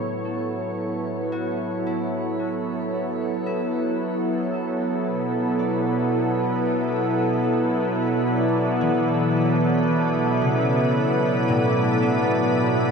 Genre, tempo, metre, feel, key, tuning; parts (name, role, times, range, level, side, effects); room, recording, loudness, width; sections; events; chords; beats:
ambient; 56 BPM; 3/4; straight; B minor; A4 = 436 Hz
warm analog pad; sustained chords; 0.0-12.9 s; B2 to D5; -21 LUFS; right 1 dB; lush chorus, shimmer reverb
concert harp; arpeggios; 0.0-12.9 s; A2 to E5; -29 LUFS; left 2 dB; analog delay, shimmer reverb
organ-like drone; drone; 5.8-12.9 s; B3 to B4; -30 LUFS; equal; ensemble chorus, built-in reverb
wet lush hall reverb, RT60 2.7 s; dreamy mix soaked in reverb; -20 LUFS; side -5 dB against mid
0.0-12.9 A section
0.0 Bm11/A
0.77 | 1.84 2.91 3.98 | 5.06 6.13 7.20 | 8.27 9.34 10.41 | 11.48 12.56